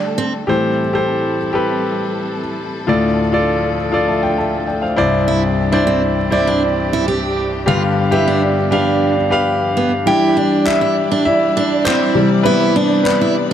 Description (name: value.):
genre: piano-driven pop.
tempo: 100 BPM.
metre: 4/4.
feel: straight.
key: C major.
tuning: A4 = 440 Hz.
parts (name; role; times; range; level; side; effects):
clear concert grand piano; accompaniment; 0.0-13.5 s; C2 to A5; -15 LUFS; left 2 dB; none.
warm studio string section; sustained chords; 0.0-13.5 s; C3 to D5; -24 LUFS; right 1 dB; none.
picked steel-string acoustic guitar; riff; 0.2-0.3, 5.3-13.5 s; B3 to G4; -18 LUFS; right 5 dB; none.
group handclap; percussion; 10.7-13.2 s; none; -26 LUFS; left 2 dB; none.
room: light reverb, small room ambience.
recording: dark, warm production.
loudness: -14 LUFS.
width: side -10 dB against mid.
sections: 0.5-10.1 A section; 10.1-13.5 B section.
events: grand piano solo 10.1-13.5.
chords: 0.5 Am7; 2.9 Dm; 5.0 Cadd9; 7.7 G7; 10.1 Em7; 12.2 Cmaj7.